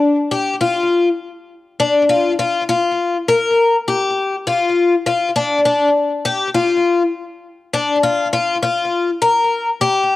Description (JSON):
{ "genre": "progressive instrumental, progressive", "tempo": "101 BPM", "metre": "5/4", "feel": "straight", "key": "unclear", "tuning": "A4 = 436 Hz", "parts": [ { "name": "picked twelve-string acoustic guitar", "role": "solo", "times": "0.3-10.2 s", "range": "D4 to Bb4", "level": "-14 LUFS", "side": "left 2 dB", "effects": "cassette tape, tape echo" } ], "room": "moderate booth ambience, RT60 0.2 s", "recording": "home recording on cassette", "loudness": "-14 LUFS", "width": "side -15 dB against mid", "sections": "0.0-10.2 A section", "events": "none", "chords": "none", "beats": "| 0.01 0.61 1.20 1.80 2.39 | 2.99 3.58 4.17 4.77 5.36 | 5.96 6.55 7.14 7.74 8.33 | 8.93 9.52 10.11" }